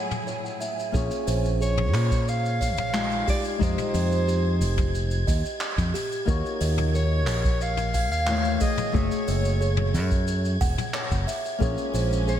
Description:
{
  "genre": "sunset chillout",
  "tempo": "90 BPM",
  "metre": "4/4",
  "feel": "straight",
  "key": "Bb minor",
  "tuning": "A4 = 440 Hz",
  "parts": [
    { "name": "clear studio string section", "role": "sustained chords", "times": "0.0-0.9, 11.6-12.4 s", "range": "A2 to Ab4", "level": "-35 LUFS", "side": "left 1 dB", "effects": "none" },
    { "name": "kalimba", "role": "arpeggios", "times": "0.0-12.4 s", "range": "G4 to Gb5", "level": "-32 LUFS", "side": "right 2 dB", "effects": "ping-pong delay" },
    { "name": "wind-like tuned noise texture", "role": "texture", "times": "0.0-12.4 s", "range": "Ab5 to Ab6", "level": "-38 LUFS", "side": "left 1 dB", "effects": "built-in reverb, lush chorus" },
    { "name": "jazz brush drum kit", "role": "drums", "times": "0.1-12.4 s", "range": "handclaps, hi-hat, shaker, toms", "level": "-33 LUFS", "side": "left 1 dB", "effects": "none" },
    { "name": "flamenco guitar", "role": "accompaniment", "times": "0.9-12.4 s", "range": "E3 to Fb5", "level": "-31 LUFS", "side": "moving between left 9 dB and right 3 dB", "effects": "auto-pan, ping-pong delay" },
    { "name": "fingered electric bass", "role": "bass", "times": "0.9-12.4 s", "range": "Fb1 to Bb2", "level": "-24 LUFS", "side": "equal", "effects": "tube saturation" },
    { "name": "electronic kick drum", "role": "drums", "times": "0.9-11.7 s", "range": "none", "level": "-26 LUFS", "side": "equal", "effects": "none" },
    { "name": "breathy soprano saxophone", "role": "melody", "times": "1.6-12.4 s", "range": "C5 to F5", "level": "-30 LUFS", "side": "equal", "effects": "tape echo" }
  ],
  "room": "moderate lush hall reverb, RT60 2.1 s",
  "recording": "dreamy mix soaked in reverb",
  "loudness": "-22 LUFS",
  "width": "side -10 dB against mid",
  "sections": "0.9-12.4 A section",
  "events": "none",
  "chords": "0.0 Gbm9; 0.9 Bbm9; 3.3 Fm9; 6.3 Ebm9; 8.6 Gbm9; 11.6 Bbm9"
}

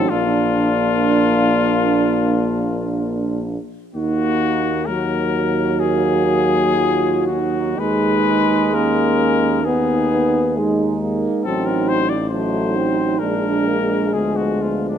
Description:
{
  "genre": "classical, hymn-like piece for brass band",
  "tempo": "63 BPM",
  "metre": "4/4",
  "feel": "uneven beats, rubato",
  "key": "Eb minor",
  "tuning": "A4 = 440 Hz",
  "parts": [
    { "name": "warm cornet", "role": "melody", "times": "0.0-15.0 s", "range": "D4 to D5", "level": "-22 LUFS", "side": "left 8 dB", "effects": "none" },
    { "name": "mellow French horn section", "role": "second line", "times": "0.0-15.0 s", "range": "Cb4 to Gb4", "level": "-23 LUFS", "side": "right 8 dB", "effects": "none" },
    { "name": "warm euphonium", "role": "accompaniment", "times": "0.0-15.0 s", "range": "F#3 to Cb4", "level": "-22 LUFS", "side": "left 3 dB", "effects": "none" },
    { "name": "warm trombone", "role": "accompaniment", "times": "0.0-15.0 s", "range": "F3 to D4", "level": "-23 LUFS", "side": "right 3 dB", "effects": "none" },
    { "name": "clear tuba", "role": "bass", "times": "0.0-15.0 s", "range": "A1 to Eb2", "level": "-23 LUFS", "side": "equal", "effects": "none" }
  ],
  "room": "light reverb",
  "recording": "close, detailed microphones",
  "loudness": "-16 LUFS",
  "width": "side -8 dB against mid",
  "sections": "0.0-15.0 A section",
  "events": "none",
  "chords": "0.1 Bb; 3.9 Ebm; 7.8 Abm/Eb; 11.4 Adim7; 13.2 Bb7b9"
}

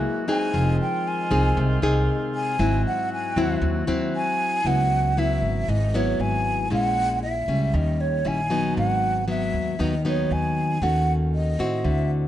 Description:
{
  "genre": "bossa nova",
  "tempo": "117 BPM",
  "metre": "4/4",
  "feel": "straight",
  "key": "C# minor from 4.6 s",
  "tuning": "A4 = 440 Hz",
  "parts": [
    { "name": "nylon-string guitar", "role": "accompaniment", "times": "0.0-12.3 s", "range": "Ab2 to Ab4", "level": "-25 LUFS", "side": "left 2 dB", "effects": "none" },
    { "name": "warm woodwind section", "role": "sustained chords", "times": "0.0-4.6 s", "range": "Eb3 to Gb4", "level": "-33 LUFS", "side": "equal", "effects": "none" },
    { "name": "breathy mellow concert flute", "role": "melody", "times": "0.3-12.1 s", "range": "C#5 to G#5", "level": "-26 LUFS", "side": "right 1 dB", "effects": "none" },
    { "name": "upright bass", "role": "bass", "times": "0.5-12.3 s", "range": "F1 to A2", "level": "-25 LUFS", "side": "right 1 dB", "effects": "none" }
  ],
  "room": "light reverb",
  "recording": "nothing above 11.0 kHz",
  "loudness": "-20 LUFS",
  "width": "side -12 dB against mid",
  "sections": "0.0-4.6 A section; 4.6-12.3 B section",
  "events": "flute solo 0.0-4.6",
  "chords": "0.0 Gb9; 0.5 Fm7; 2.6 Ab7b13; 4.6 C#m7; 6.7 A#m7b5; 7.7 D#7b9; 8.8 G#m7; 10.8 D#m7b5"
}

